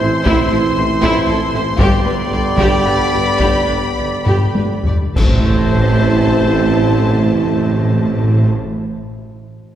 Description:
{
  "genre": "cinematic, epic orchestral film score",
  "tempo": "66-79 BPM (dotted quarters)",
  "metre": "6/8",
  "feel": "straight",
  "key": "A minor",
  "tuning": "A4 = 438 Hz",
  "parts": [
    { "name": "clear symphonic violin section", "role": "melody", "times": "0.0-8.5 s", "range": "A5 to C6", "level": "-25 LUFS", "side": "left 4 dB", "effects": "none" },
    { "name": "clear symphonic violin section", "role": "second line", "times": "0.0-8.5 s", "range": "E4 to D5", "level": "-24 LUFS", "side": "left 3 dB", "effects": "none" },
    { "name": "rich symphonic viola section", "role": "accompaniment", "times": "0.0-8.5 s", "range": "E4 to G4", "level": "-24 LUFS", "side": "right 2 dB", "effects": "none" },
    { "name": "mellow French horn section", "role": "sustained chords", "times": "0.0-8.5 s", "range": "B3 to G4", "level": "-23 LUFS", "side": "equal", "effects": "none" },
    { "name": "warm trombone section", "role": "sustained chords", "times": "0.0-8.5 s", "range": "D3 to A3", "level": "-24 LUFS", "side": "right 2 dB", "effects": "none" },
    { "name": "clear trumpet section", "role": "stabs", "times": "0.0-8.5 s", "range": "C5 to D5", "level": "-22 LUFS", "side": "right 1 dB", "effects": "none" },
    { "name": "mellow tuba", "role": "bass", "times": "0.0-8.5 s", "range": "G1 to A1", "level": "-22 LUFS", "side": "right 2 dB", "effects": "none" },
    { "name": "rich symphonic cello section", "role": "bass", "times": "0.0-8.5 s", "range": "G2 to A2", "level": "-21 LUFS", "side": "right 2 dB", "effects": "none" },
    { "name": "rich symphonic double bass section", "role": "bass", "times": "0.0-8.5 s", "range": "G1 to A1", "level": "-22 LUFS", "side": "right 2 dB", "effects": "none" },
    { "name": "taiko ensemble", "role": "drums", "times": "0.3-6.3 s", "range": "none", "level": "-19 LUFS", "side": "left 1 dB", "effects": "none" },
    { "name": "clash cymbals and concert bass drum", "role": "percussion", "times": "5.2-6.3 s", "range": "none", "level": "-21 LUFS", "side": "equal", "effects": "none" },
    { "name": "timpani", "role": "percussion", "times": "5.2-8.5 s", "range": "A2", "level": "-20 LUFS", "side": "right 1 dB", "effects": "none" }
  ],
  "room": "wet concert hall reverb, RT60 2.0 s",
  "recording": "heard from further back in the room",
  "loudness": "-12 LUFS",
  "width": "side -10 dB against mid",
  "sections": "0.0-5.2 A section; 5.2-8.8 B section",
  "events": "slowing down 1.0-5.2; drum fill 4.3-5.2; band accent 5.2-5.8",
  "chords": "0.0 Am; 1.8 G; 5.2 Am",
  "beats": "| 0.26 1.03 | 1.79 2.58 | 3.40 4.26 | 5.16 6.07 | 6.97 7.87"
}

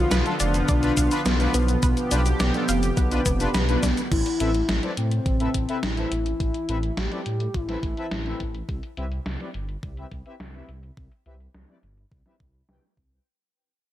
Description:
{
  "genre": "synthwave",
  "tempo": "105 BPM",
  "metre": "4/4",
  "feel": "straight",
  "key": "A minor",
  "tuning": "A4 = 440 Hz",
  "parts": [
    { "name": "soft octave-layered synth lead", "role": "melody", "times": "0.0-8.6 s", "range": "B3 to G4", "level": "-28 LUFS", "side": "left 1 dB", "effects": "chorus, digital delay" },
    { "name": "chorused pulse-width pad", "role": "sustained chords", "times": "0.0-4.1 s", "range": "D3 to G4", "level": "-29 LUFS", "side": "right 1 dB", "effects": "sidechain pumping" },
    { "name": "dark detuned saw bass", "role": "bass", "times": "0.0-13.2 s", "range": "F1 to A2", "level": "-26 LUFS", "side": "equal", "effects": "sidechain pumping" },
    { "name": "analog pluck", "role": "arpeggios", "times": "0.1-4.1 s", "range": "B3 to F5", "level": "-33 LUFS", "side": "right 1 dB", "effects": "chorus, digital delay" },
    { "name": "gated 80s digital drum machine", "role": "drums", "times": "0.1-13.2 s", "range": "cabasa, crash cymbal, hi-hat, snare drum", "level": "-29 LUFS", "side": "equal", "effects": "gated reverb, gated reverb snare, overdrive, low-pass filter on hats, low-pass filter on perc, low-pass filter on snare, low-pass filter on cymbals, low-pass filter on room" },
    { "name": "analog synth brass", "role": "stabs", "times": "0.3-12.8 s", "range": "C4 to G5", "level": "-32 LUFS", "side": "left 2 dB", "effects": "chorus" },
    { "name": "electronic kick drum", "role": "drums", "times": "0.7-13.1 s", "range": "none", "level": "-27 LUFS", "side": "equal", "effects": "overdrive" }
  ],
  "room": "light reverb",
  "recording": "none",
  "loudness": "-21 LUFS",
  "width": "side -13 dB against mid",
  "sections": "0.0-4.1 A section; 4.1-13.3 B section",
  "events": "drum fill 3.8; fade-out 4.1-13.3; filter sweep on drum 4.1-13.3; filter sweep on analog polysynth 4.1-13.3",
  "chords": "0.0 Bdim; 4.1 Amadd9; 8.7 Cmaj7",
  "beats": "0.12 0.69 1.26 | 1.83 2.40 2.97 3.54 | 4.12 4.69 5.26 5.83 | 6.40 6.97 7.54 8.12 | 8.69 9.26 9.83 10.40 | 10.97 11.54 12.12 12.69"
}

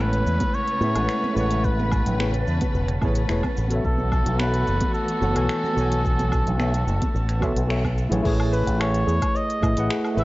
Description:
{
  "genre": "sunset chillout",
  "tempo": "109 BPM",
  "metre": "4/4",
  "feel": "straight",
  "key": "A major",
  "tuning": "A4 = 440 Hz",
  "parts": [
    { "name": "trumpet with cup mute", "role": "melody", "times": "0.0-10.2 s", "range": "A4 to E5", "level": "-28 LUFS", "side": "equal", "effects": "vintage 12-bit sampler grit, digital delay" },
    { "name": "tine electric piano", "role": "accompaniment", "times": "0.0-10.2 s", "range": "G#3 to G#5", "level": "-26 LUFS", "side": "equal", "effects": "auto-pan" },
    { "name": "warm symphonic string section", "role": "sustained chords", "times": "0.0-8.2 s", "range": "C#3 to B4", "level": "-31 LUFS", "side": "left 1 dB", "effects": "none" },
    { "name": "fingered electric bass with an envelope filter", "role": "bass", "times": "0.0-10.2 s", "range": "E1 to A2", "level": "-23 LUFS", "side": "equal", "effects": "none" },
    { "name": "congas", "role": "percussion", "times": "0.0-8.2 s", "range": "none", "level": "-33 LUFS", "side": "right 2 dB", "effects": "none" },
    { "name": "drifting glass-harmonics texture", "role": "texture", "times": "0.6-8.3 s", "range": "A5", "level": "-40 LUFS", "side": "right 3 dB", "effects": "chorus, built-in reverb" },
    { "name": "deep house drum kit", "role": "drums", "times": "0.1-10.2 s", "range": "crash cymbal, finger snaps, hi-hat, shaker, woodblock", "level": "-35 LUFS", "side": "equal", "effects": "none" },
    { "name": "electronic kick drum", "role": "drums", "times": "0.4-9.7 s", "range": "none", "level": "-26 LUFS", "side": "equal", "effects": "none" },
    { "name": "soft round pluck", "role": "arpeggios", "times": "8.3-10.2 s", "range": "G#4 to C#5", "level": "-32 LUFS", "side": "left 1 dB", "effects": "analog chorus, digital delay" }
  ],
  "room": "light reverb",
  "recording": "worn, warbling old tape, cassette tape, warbly pitch drift, nothing above 7.7 kHz",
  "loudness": "-20 LUFS",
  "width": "side -19 dB against mid",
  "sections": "0.0-8.3 A section; 8.3-10.2 B section",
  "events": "band accent 7.7",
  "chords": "0.0 Amaj9; 3.8 B7sus4; 8.3 Amaj9",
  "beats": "0.54 1.09 | 1.65 2.20 2.75 3.30 | 3.85 4.40 4.95 5.50 | 6.05 6.60 7.15 7.70 | 8.25 8.80 9.35 9.90"
}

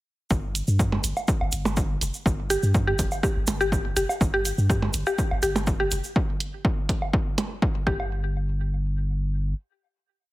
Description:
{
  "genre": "minimal techno",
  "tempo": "123 BPM",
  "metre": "4/4",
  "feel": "straight",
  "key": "unclear",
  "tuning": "A4 = 439 Hz",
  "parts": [
    { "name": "punchy sub bass", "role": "bass", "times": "0.3-9.5 s", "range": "F1 to G2", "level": "-26 LUFS", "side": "equal", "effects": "sidechain pumping" },
    { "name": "electronic kick drum", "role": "drums", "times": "0.3-8.0 s", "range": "none", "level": "-25 LUFS", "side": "equal", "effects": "overdrive" },
    { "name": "cabasa", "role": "percussion", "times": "0.3-6.1 s", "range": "none", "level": "-34 LUFS", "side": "right 2 dB", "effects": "none" },
    { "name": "electronic hi-hat", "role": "drums", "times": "0.6-7.5 s", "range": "none", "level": "-32 LUFS", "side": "right 3 dB", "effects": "overdrive" },
    { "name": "percussion blips and woodblock", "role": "percussion", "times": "0.9-8.1 s", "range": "none", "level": "-30 LUFS", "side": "right 2 dB", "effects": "ping-pong delay" },
    { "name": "mallet-like synth pluck", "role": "riff", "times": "2.5-8.3 s", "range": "G4", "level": "-27 LUFS", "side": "left 1 dB", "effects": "chorus, sidechain pumping, ping-pong delay" }
  ],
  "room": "light reverb",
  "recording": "heavily compressed radio sound",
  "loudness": "-22 LUFS",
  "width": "side -18 dB against mid",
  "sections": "0.3-8.1 groove; 8.1-10.3 final hit",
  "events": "none",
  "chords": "none",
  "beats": "| 0.31 0.79 1.28 1.77 | 2.26 2.75 3.23 3.72 | 4.21 4.70 5.18 5.67 | 6.16 6.65 7.14 7.62 | 8.11 8.60 9.09"
}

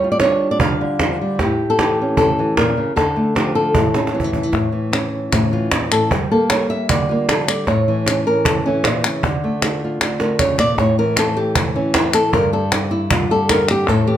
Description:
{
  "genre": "flamenco",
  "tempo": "154 BPM",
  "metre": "4/4",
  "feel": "straight",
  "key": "A phrygian dominant",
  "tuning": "A4 = 440 Hz",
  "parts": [
    { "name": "flamenco guitar", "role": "melody", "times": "0.0-14.2 s", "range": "G2 to F5", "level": "-16 LUFS", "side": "equal", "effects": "none" },
    { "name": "cajon", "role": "percussion", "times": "0.0-14.1 s", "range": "none", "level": "-21 LUFS", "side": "right 3 dB", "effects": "none" },
    { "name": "palmas hand claps", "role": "percussion", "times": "4.5-14.1 s", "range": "none", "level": "-22 LUFS", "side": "left 4 dB", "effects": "none" }
  ],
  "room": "moderate large studio reverb, RT60 0.9 s",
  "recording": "close, detailed microphones",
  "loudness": "-15 LUFS",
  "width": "side -10 dB against mid",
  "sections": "0.0-4.5 A section; 4.5-14.2 B section",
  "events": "drum fill 4.0-4.5, 10.0-10.8; nylon-string guitar solo 4.5-14.2",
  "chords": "0.0 G5; 1.4 A; 3.0 Dm; 3.8 A; 6.1 Gm7; 7.7 A; 9.2 Dm; 10.8 A5; 12.3 G5",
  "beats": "0.21 0.60 1.00 | 1.39 1.79 2.18 2.58 | 2.97 3.36 3.76 4.15 | 4.54 4.94 5.33 5.72 | 6.12 6.51 6.90 7.29 | 7.68 8.07 8.46 8.85 | 9.24 9.63 10.01 10.40 | 10.79 11.18 11.56 11.95 | 12.34 12.72 13.11 13.50 | 13.88"
}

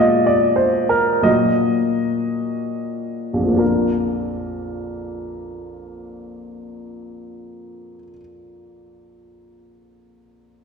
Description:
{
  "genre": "classical, romantic character piece for solo piano",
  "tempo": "64-110 BPM",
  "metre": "3/4",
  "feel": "rubato",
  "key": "Bb major",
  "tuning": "A4 = 441 Hz",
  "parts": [
    { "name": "warm upright piano", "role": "solo", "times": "0.0-10.6 s", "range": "Bb1 to F5", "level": "-18 LUFS", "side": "equal", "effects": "none" }
  ],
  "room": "wet concert hall reverb, RT60 2.0 s",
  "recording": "recorded in a church or concert hall",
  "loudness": "-17 LUFS",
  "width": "side -5 dB against mid",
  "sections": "0.0-3.6 A section; 3.6-8.4 B section",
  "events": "slowing down 0.0-3.6",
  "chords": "0.0 Bb5; 1.3 Ebm/Bb; 3.6 Bb",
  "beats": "0.01 0.58 | 1.26 1.95 2.73 | 3.60 4.42 5.22 | 6.04 6.86 7.64"
}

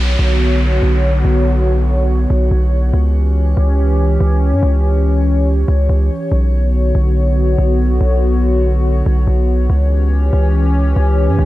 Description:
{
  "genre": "hip hop",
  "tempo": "142 BPM",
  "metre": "4/4",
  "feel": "half-time",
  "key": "B minor",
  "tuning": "A4 = 442 Hz",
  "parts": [
    { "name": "hollow soft pad", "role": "sustained chords", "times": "0.0-11.5 s", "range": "D3 to C#5", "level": "-18 LUFS", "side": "left 1 dB", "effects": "chorus, low-pass filter" },
    { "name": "long sustained 808-style bass", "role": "bass", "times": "0.0-11.5 s", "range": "B1 to G2", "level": "-13 LUFS", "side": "equal", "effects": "none" },
    { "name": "downlifter", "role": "sound effects", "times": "0.0-2.9 s", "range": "none", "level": "-28 LUFS", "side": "equal", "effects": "none" }
  ],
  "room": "little or no reverb",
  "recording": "dry, gritty hardware recording",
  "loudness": "-12 LUFS",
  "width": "side -16 dB against mid",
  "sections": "0.0-11.5 A section",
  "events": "filter sweep on analog synth pad 0.0-11.5",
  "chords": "0.0 Bmadd9; 2.9 C#dim; 6.3 Bmadd9; 9.7 C#dim",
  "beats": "0.40 0.82 | 1.25 1.67 2.09 2.51 | 2.94 3.36 3.78 4.20 | 4.63 5.05 5.47 5.89 | 6.32 6.74 7.16 7.58 | 8.01 8.43 8.85 9.27 | 9.70 10.12 10.54 10.96 | 11.39"
}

